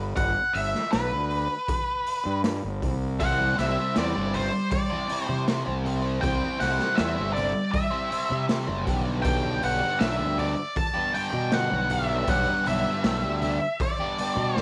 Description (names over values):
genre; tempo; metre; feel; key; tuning
psychedelic rock; 79 BPM; 4/4; straight; unclear; A4 = 440 Hz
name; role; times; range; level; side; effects
fuzz fingered electric bass; bass; 0.0-14.6 s; F#1 to C3; -31 LUFS; equal; overdrive
octave-fuzz lead guitar; melody; 0.2-14.6 s; B4 to A5; -30 LUFS; equal; distortion, slapback echo
raw garage drum kit; drums; 0.2-14.6 s; hi-hat, kick drum, snare drum; -33 LUFS; equal; none
crunchy overdriven guitar; riff; 3.2-14.6 s; G2 to C5; -32 LUFS; equal; flanger
congas; percussion; 3.4-14.5 s; none; -43 LUFS; equal; none
room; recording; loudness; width
light reverb; none; -26 LUFS; mono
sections
0.0-14.6 A section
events
none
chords
0.0 G; 2.8 C; 8.9 G/B